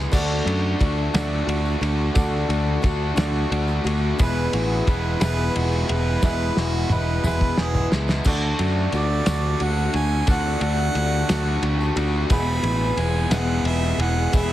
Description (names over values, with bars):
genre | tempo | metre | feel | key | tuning
folk rock and heartland rock | 59 BPM (dotted quarters) | 6/8 | straight | unclear | A4 = 440 Hz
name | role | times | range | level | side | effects
picked twelve-string acoustic guitar | accompaniment | 0.0-14.5 s | E2 to G#4 | -29 LUFS | left 4 dB | none
overdriven electric guitar | riff | 0.0-14.5 s | E2 to G#4 | -27 LUFS | equal | none
picked electric bass | bass | 0.0-14.5 s | E1 to F#2 | -23 LUFS | equal | none
bright grand piano | accompaniment | 0.1-14.5 s | E4 to E5 | -33 LUFS | right 4 dB | none
cloth-damped thuddy drum kit | drums | 0.1-14.5 s | crash cymbal, kick drum, ride cymbal, snare drum, toms | -26 LUFS | equal | none
tambourine | percussion | 0.1-14.5 s | none | -41 LUFS | left 5 dB | none
clear harmonica | second line | 4.2-14.5 s | F#4 to B5 | -28 LUFS | right 4 dB | none
room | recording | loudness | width
little or no reverb | heavily compressed radio sound, multiband compression | -19 LUFS | side -13 dB against mid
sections
0.0-8.2 A section; 8.2-14.5 B section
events
drum fill 6.2-8.2; harmonica solo 8.2-14.5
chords
0.1 D; 4.2 E; 8.2 D; 12.3 E